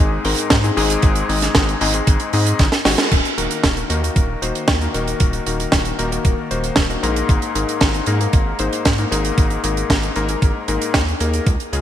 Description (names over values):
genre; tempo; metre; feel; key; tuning
italo disco; 115 BPM; 4/4; straight; unclear; A4 = 440 Hz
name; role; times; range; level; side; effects
warm electric grand piano; stabs; 0.0-11.8 s; Ab2 to C5; -21 LUFS; left 4 dB; low-pass filter, shimmer reverb, ping-pong delay
round analog bass; bass; 0.0-11.8 s; Eb1 to Ab2; -22 LUFS; equal; none
tight funk drum kit; drums; 0.2-11.8 s; crash cymbal, hi-hat, snare drum; -20 LUFS; right 2 dB; none
electronic kick drum; drums; 0.5-11.6 s; none; -16 LUFS; equal; none
room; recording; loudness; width
moderate plate reverb, RT60 2.5 s; bright 1980s-style digital production; -15 LUFS; side -11 dB against mid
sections
0.0-3.1 A section; 3.1-11.8 B section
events
drum fill 2.6-3.1; band accent 3.0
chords
0.0 Ab; 3.1 Ebm; 7.3 Absus2